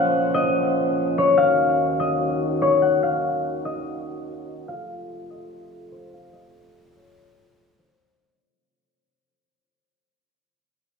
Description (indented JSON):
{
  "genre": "hip hop",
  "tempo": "145 BPM",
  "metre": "4/4",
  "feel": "half-time",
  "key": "unclear",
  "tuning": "A4 = 441 Hz",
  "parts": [
    { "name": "concert harp", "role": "melody", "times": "0.0-9.8 s", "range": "C5 to Gb5", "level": "-20 LUFS", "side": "left 3 dB", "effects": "low-pass filter, digital delay" },
    { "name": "dark French horn section", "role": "sustained chords", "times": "0.0-8.0 s", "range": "Eb2 to C5", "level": "-25 LUFS", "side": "right 1 dB", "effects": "none" }
  ],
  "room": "moderate huge ambient reverb, RT60 4.5 s",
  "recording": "low-pass filter, studio reverb",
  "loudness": "-18 LUFS",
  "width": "side -5 dB against mid",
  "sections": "0.0-8.0 A section",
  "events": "fade-out 0.0-8.0",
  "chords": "0.0 Bbmadd9; 1.4 Ebm7; 4.7 F",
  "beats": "0.13 0.55 0.96 | 1.38 1.79 2.20 2.62 | 3.03 3.44 3.86 4.27 | 4.69 5.10 5.51 5.93 | 6.34 6.75 7.17 7.58"
}